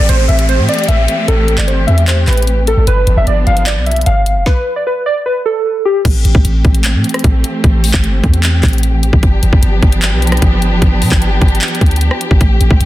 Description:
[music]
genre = hip hop, trap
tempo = 151 BPM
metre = 4/4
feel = half-time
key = A minor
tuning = A4 = 444 Hz
[part]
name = warbly lo-fi synth keys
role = melody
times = 0.0-6.0 s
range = G4 to F5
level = -15 LUFS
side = equal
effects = chorus, low-pass filter, tape echo
[part]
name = dark symphonic string section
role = sustained chords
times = 0.0-12.9 s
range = E3 to G4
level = -18 LUFS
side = right 1 dB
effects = none
[part]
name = clean 808-style bass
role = bass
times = 0.0-12.9 s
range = F1 to B2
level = -12 LUFS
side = equal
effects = none
[part]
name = downlifter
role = sound effects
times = 0.0-2.9 s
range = none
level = -23 LUFS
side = left 1 dB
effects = none
[part]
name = trap drum kit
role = drums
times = 0.1-12.9 s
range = crash cymbal, handclaps, hi-hat, kick drum, rim click, snare drum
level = -13 LUFS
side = equal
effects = none
[sound]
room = little or no reverb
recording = dense, heavily limited modern master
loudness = -10 LUFS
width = side -15 dB against mid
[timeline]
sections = 0.0-6.1 A section; 6.1-12.9 B section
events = stop 4.5-6.1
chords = 0.0 Am7; 2.9 G7; 6.1 Am7; 9.2 G7

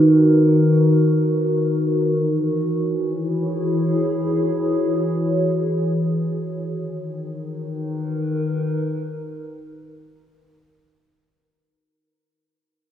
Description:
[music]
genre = ambient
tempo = free time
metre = none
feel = none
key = unclear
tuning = A4 = 440 Hz
[part]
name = warbly tape-like pad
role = sustained chords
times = 0.0-11.2 s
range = D#3 to C#5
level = -18 LUFS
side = equal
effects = chorus, built-in reverb
[sound]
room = wet huge ambient reverb, RT60 9.2 s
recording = cassette tape, small room ambience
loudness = -18 LUFS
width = side -10 dB against mid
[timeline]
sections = 0.0-11.2 A section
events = filter sweep on ambient pad 0.0-11.2; fade-out 5.1-11.2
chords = 0.0 G#m7/D# (rootless); 2.1 E69; 6.6 G#m7/D#

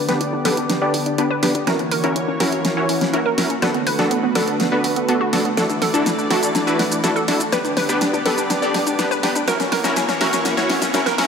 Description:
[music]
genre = progressive house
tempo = 123 BPM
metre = 4/4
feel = straight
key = unclear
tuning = A4 = 440 Hz
[part]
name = lush unison pad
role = sustained chords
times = 0.0-11.3 s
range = D3 to D5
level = -24 LUFS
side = equal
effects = chorus
[part]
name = glassy wavetable pluck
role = arpeggios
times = 0.0-11.3 s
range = B3 to B4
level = -22 LUFS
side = equal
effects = chorus, ping-pong delay
[part]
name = supersaw stab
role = stabs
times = 0.1-11.3 s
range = B3 to D5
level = -21 LUFS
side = left 1 dB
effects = cassette tape, low-pass filter, ping-pong delay
[part]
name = pop drum kit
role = drums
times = 0.1-11.3 s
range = hi-hat, shaker, snare drum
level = -23 LUFS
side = right 1 dB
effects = studio reverb
[part]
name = riser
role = sound effects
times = 8.2-11.3 s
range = none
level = -36 LUFS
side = right 1 dB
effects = none
[sound]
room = moderate scoring stage reverb, RT60 2.0 s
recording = high-pass filter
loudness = -17 LUFS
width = side -6 dB against mid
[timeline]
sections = 0.0-11.3 A section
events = build-up 0.0-11.3; drum fill 0.0-11.3; filter sweep on synth arpeggio sound 0.0-11.3; filter sweep on supersaw synth 0.0-11.3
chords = 0.0 G; 1.7 F#7; 3.6 Bm7; 5.6 Dadd9; 7.5 G; 9.5 F#7

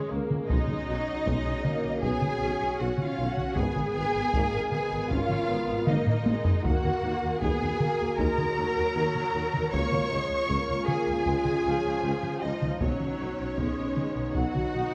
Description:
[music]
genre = cinematic, epic orchestral film score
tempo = 78 BPM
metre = 4/4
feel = straight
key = unclear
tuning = A4 = 440 Hz
[part]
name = warm symphonic violin section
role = melody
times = 0.0-14.9 s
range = Db5 to Db6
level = -40 LUFS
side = equal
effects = none
[part]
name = rich symphonic violin section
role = second line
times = 0.0-14.9 s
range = Db5 to Db6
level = -38 LUFS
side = equal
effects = none
[part]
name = rich symphonic viola section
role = accompaniment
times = 0.0-14.9 s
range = F3 to D#4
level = -38 LUFS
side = equal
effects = none
[part]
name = dark French horn section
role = sustained chords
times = 0.0-14.9 s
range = Cb3 to Bb4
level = -36 LUFS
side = equal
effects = none
[part]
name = rich symphonic cello section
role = bass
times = 0.0-14.9 s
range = Db4 to Db5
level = -35 LUFS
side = equal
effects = none
[part]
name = mellow tuba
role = bass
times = 0.1-14.8 s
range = Ab1 to Eb2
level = -38 LUFS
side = equal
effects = none
[part]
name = rich symphonic double bass section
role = bass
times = 0.1-14.8 s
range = Ab1 to Eb2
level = -38 LUFS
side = equal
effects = none
[part]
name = taiko ensemble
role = drums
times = 0.3-14.9 s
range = none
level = -33 LUFS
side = equal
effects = none
[sound]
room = wet recital hall reverb, RT60 1.8 s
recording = worn, warbling old tape, cassette tape, warbly pitch drift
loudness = -28 LUFS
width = mono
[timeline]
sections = 0.0-14.9 A section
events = drum fill 5.9-6.6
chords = 0.5 Badd9; 3.6 Abmadd9; 6.6 Ebm; 9.7 Db; 12.8 Badd9

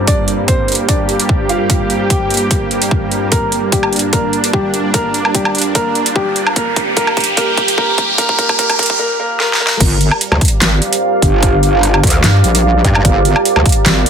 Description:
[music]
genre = heavy wobble dubstep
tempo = 148 BPM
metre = 4/4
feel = half-time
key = G minor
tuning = A4 = 441 Hz
[part]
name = supersaw pad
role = sustained chords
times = 0.0-14.1 s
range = G2 to D5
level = -20 LUFS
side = right 2 dB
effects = sidechain pumping, low-pass filter
[part]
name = deep dark ambient pad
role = texture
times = 0.0-14.1 s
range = G4 to Bb5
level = -20 LUFS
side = right 3 dB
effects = chorus, built-in reverb, sidechain pumping
[part]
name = warm concert grand piano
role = melody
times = 0.1-9.8 s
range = G3 to G5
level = -18 LUFS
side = left 1 dB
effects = ping-pong delay
[part]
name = big-room dance drum kit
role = drums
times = 0.1-14.1 s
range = crash cymbal, handclaps, hi-hat, snare drum, woodblock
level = -16 LUFS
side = right 1 dB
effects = overdrive, high-pass filter on hats, high-pass filter on perc, high-pass filter on snare, high-pass filter on cymbals
[part]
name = electronic kick drum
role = drums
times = 0.1-13.7 s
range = none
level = -16 LUFS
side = equal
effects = none
[part]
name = riser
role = sound effects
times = 5.8-9.0 s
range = none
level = -19 LUFS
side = right 1 dB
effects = none
[part]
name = wobble bass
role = bass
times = 9.8-14.0 s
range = G1 to G2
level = -12 LUFS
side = equal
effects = chorus, overdrive
[part]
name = metallic wobble bass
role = bass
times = 10.3-13.6 s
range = G1 to G2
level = -13 LUFS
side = equal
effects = chorus, overdrive
[sound]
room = light reverb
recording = dense, heavily limited modern master, high-pass filter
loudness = -11 LUFS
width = side -7 dB against mid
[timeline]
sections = 0.0-9.8 A section; 9.8-14.1 B section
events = build-up 0.0-9.8; filter sweep on supersaw synth 0.0-9.8; filter sweep 0.0-9.8; drum fill 3.3-9.0, 9.4-9.8; riser 5.8-9.0; drop 9.8-14.1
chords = 0.0 Gm

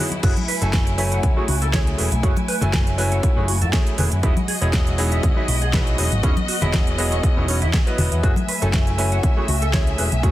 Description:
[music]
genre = nu-disco, nu disco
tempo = 120 BPM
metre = 4/4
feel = swing 54% on 16ths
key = F# dorian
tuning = A4 = 439 Hz
[part]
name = clear concert grand piano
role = accompaniment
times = 0.0-10.3 s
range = F#3 to G#5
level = -26 LUFS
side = equal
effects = slapback echo
[part]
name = warm studio string section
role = sustained chords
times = 0.0-10.3 s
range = G#3 to G#5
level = -29 LUFS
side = left 2 dB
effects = sidechain pumping
[part]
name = mellow electric guitar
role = riff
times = 0.0-10.3 s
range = C#4 to F#5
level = -29 LUFS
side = right 2 dB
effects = analog chorus
[part]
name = pop drum kit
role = drums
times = 0.1-10.3 s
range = crash cymbal, hi-hat, snare drum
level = -26 LUFS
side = right 1 dB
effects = none
[part]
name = congas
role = percussion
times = 0.1-10.2 s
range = none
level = -28 LUFS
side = left 2 dB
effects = none
[part]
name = picked electric bass with an envelope filter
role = bass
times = 0.2-10.3 s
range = E1 to F#2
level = -21 LUFS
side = equal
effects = tube saturation
[part]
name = electronic kick drum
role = drums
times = 0.2-10.3 s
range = none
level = -20 LUFS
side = equal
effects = none
[sound]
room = light reverb, digital ambience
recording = dense, heavily limited modern master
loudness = -17 LUFS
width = side -14 dB against mid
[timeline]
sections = 0.0-10.3 A section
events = break 0.0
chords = 0.2 F#m9; 4.2 Emaj9; 6.0 C#m11/E; 8.2 F#m9

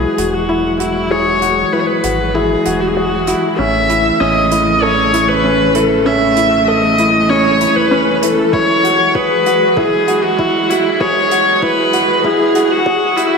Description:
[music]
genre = piano and strings electronica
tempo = 97 BPM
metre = 4/4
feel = straight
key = E major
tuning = A4 = 441 Hz
[part]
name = dark viola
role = melody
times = 0.0-13.4 s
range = E4 to E5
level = -14 LUFS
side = left 1 dB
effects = none
[part]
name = warm string quartet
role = sustained chords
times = 0.0-13.4 s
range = C#3 to A3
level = -20 LUFS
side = right 1 dB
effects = stereo widening, low-pass filter
[part]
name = felt-muted upright piano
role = riff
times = 0.0-13.4 s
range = C#4 to A4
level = -17 LUFS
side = equal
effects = none
[part]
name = round analog bass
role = bass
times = 0.0-13.2 s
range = E1 to B1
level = -26 LUFS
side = equal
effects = sidechain pumping
[part]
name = hi-hat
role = drums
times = 0.2-13.3 s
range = none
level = -26 LUFS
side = right 6 dB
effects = none
[part]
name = electronic kick drum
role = drums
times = 8.5-13.0 s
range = none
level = -25 LUFS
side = equal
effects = overdrive
[sound]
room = wet lush hall reverb, RT60 2.2 s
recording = dreamy mix soaked in reverb, high-pass filter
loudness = -11 LUFS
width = side -5 dB against mid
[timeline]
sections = 0.0-13.4 A section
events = build-up 0.0-13.4; filter sweep on string quartet 0.0-13.4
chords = 0.0 Eadd9; 3.6 A; 8.5 Eadd9

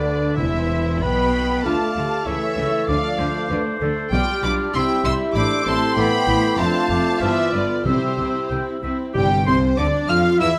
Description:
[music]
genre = quick classical-period movement for symphony orchestra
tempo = 97 BPM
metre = 2/4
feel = straight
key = C major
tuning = A4 = 439 Hz
[part]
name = rich studio violin section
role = melody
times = 0.0-10.5 s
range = C5 to F6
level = -28 LUFS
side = equal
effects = none
[part]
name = clear oboe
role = second line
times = 0.0-10.6 s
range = D4 to G5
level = -31 LUFS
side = equal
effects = none
[part]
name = concert flute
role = second line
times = 0.0-10.6 s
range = D5 to F6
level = -30 LUFS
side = equal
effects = none
[part]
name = mellow clarinet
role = second line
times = 0.0-10.5 s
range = D4 to F5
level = -29 LUFS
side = equal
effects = none
[part]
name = rich studio violin section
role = second line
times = 0.0-10.6 s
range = G4 to C6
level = -32 LUFS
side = equal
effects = none
[part]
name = rich studio viola section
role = accompaniment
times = 0.0-10.6 s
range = D3 to F4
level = -29 LUFS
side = equal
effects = none
[part]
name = warm French horn section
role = sustained chords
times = 0.0-10.5 s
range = C3 to F4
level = -29 LUFS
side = equal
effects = none
[part]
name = clear studio cello section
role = bass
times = 0.0-10.5 s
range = D2 to F3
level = -28 LUFS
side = equal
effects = none
[part]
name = clear studio double bass section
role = bass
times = 0.0-10.5 s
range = E1 to F2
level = -29 LUFS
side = equal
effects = none
[part]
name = timpani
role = percussion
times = 0.4-1.3, 7.9-9.7 s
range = C3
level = -30 LUFS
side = equal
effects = none
[sound]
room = moderate recital hall reverb, RT60 1.3 s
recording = close, detailed microphones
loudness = -20 LUFS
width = mono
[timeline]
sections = 0.0-9.1 A section; 9.1-10.6 B section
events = none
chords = 0.4 C/E; 1.6 Dm; 2.3 A; 2.9 Dm; 4.1 G7; 4.7 C; 5.4 Am; 6.6 Dm7/F; 7.2 G7; 7.9 C; 9.1 C5/G; 9.8 Dm

